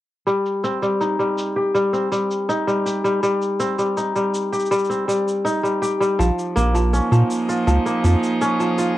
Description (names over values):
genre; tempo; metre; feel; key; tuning
folktronica; 81 BPM; 4/4; straight; unclear; A4 = 444 Hz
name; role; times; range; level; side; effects
kora; arpeggios; 0.3-9.0 s; F3 to G4; -19 LUFS; left 1 dB; vintage 12-bit sampler grit, low-pass filter, cassette tape, analog delay
shaker; drums; 0.3-8.9 s; none; -36 LUFS; right 1 dB; low-pass filter on perc, cassette tape, low-pass filter on room
rich string quartet; sustained chords; 6.2-9.0 s; F3 to Ab4; -23 LUFS; right 2 dB; cassette tape
round analog bass; bass; 6.2-8.2 s; Bb1 to Bb2; -16 LUFS; equal; none
room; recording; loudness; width
light reverb; home recording on cassette; -18 LUFS; side -14 dB against mid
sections
0.3-9.0 A section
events
filter sweep on kora 0.3-9.0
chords
0.3 Gsus4; 6.2 Bbm7